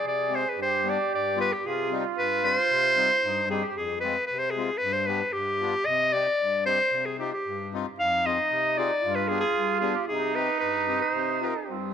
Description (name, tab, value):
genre	klezmer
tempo	114 BPM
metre	2/4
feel	straight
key	C harmonic minor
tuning	A4 = 439 Hz
part	bright clarinet	melody	0.0-11.8 s	G4 to F5	-25 LUFS	left 1 dB	none
part	trombone with plunger mute	second line	0.0-3.7, 8.0-11.9 s	C4 to Ab4	-30 LUFS	right 11 dB	none
part	accordion	accompaniment	0.0-11.9 s	F2 to Ab4	-33 LUFS	left 9 dB	none
room	moderate echo chamber reverb, RT60 2.3 s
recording	1960s-style stereo with parts hard left and right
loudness	-23 LUFS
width	side -8 dB against mid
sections	0.0-3.8 A section; 3.8-11.9 A section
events	none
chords	0.0 Fm (rootless); 0.6 G; 1.6 Cm; 3.8 Fm; 4.8 G; 5.9 Cm; 8.0 Fm; 9.0 G; 10.1 Cm